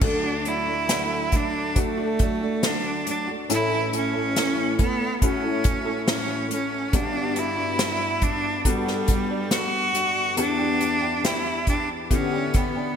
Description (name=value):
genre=pop ballad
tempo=70 BPM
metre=4/4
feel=straight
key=D major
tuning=A4 = 443 Hz
part: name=bright cello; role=melody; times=0.0-13.0 s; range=G3 to F#4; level=-25 LUFS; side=right 1 dB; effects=ping-pong delay
part: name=felt-muted upright piano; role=accompaniment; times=0.0-13.0 s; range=G1 to A4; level=-29 LUFS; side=left 4 dB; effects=ensemble chorus
part: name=flamenco guitar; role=arpeggios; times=0.0-13.0 s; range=A2 to A4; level=-31 LUFS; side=right 3 dB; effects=none
part: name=unplugged drum kit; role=drums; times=0.0-12.7 s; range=crash cymbal, hi-hat, kick drum, snare drum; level=-24 LUFS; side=equal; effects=gated reverb
room=moderate lush hall reverb, RT60 2.1 s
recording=bright 1980s-style digital production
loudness=-21 LUFS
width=side -8 dB against mid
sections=0.0-13.0 A section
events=none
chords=0.0 D; 3.5 A; 6.9 Gmaj7; 10.4 Em7